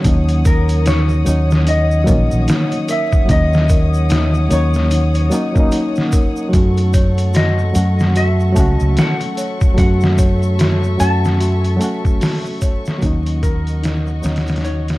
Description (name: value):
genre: trip hop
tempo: 74 BPM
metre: 4/4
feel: swing 59% on 16ths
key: unclear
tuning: A4 = 439 Hz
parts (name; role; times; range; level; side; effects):
- barky reed electric piano; accompaniment; 0.0-15.0 s; D#3 to F#4; -22 LUFS; equal; overdrive, tremolo, vintage 12-bit sampler grit, tape echo
- dark chamber string section; sustained chords; 0.0-15.0 s; F#4 to D#6; -28 LUFS; left 2 dB; none
- celesta; arpeggios; 0.0-15.0 s; D#4 to A5; -25 LUFS; left 1 dB; vintage 12-bit sampler grit, tape echo
- trip hop sampler-style drum kit; drums; 0.0-15.0 s; hi-hat, kick drum, snare drum; -17 LUFS; equal; studio reverb
- egg shaker; percussion; 0.0-15.0 s; none; -36 LUFS; right 3 dB; none
- fingered electric bass; bass; 0.1-15.0 s; A#1 to F#2; -15 LUFS; equal; none
- clean lap steel guitar; melody; 0.5-15.0 s; A#4 to A5; -24 LUFS; left 1 dB; tape echo
room: little or no reverb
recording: dark, warm production, vinyl crackle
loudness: -13 LUFS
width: side -18 dB against mid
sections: 0.0-15.0 A section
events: fade-out 10.9-15.0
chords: 0.0 D#m7; 6.5 F#m; 13.0 D#m7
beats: | 0.05 0.86 1.67 2.48 | 3.29 4.10 4.91 5.72 | 6.53 7.34 8.16 8.97 | 9.78 10.59 11.40 12.21 | 13.02 13.83 14.64